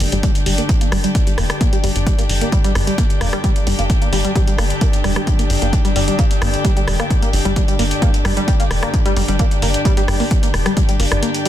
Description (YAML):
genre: driving peak-time techno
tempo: 131 BPM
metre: 4/4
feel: straight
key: G minor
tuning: A4 = 440 Hz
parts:
  - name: tight sequenced synth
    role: riff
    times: 0.0-11.5 s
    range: G3 to Bb3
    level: -23 LUFS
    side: equal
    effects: chorus, vintage 12-bit sampler grit, sidechain pumping, dub echo
  - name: tight sequencer bass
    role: bass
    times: 0.0-11.2 s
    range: F1 to G1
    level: -20 LUFS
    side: equal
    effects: sidechain pumping
  - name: metallic inharmonic drone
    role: drone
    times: 0.0-11.5 s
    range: G2 to D3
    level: -27 LUFS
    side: equal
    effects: chorus, built-in reverb, sidechain pumping
  - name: punchy analog drum machine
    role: drums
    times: 0.0-11.5 s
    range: hi-hat, rim click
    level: -24 LUFS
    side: left 1 dB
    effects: soft clipping on snare
  - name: warm chamber string section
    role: texture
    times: 0.0-11.5 s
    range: D4 to G5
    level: -24 LUFS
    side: left 2 dB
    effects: sidechain pumping
  - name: electronic kick drum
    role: drums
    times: 0.2-10.9 s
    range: none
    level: -17 LUFS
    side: equal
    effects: none
room: light reverb, digital ambience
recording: dense, heavily limited modern master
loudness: -14 LUFS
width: side -12 dB against mid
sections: 0.0-11.5 A section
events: none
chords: 0.0 G5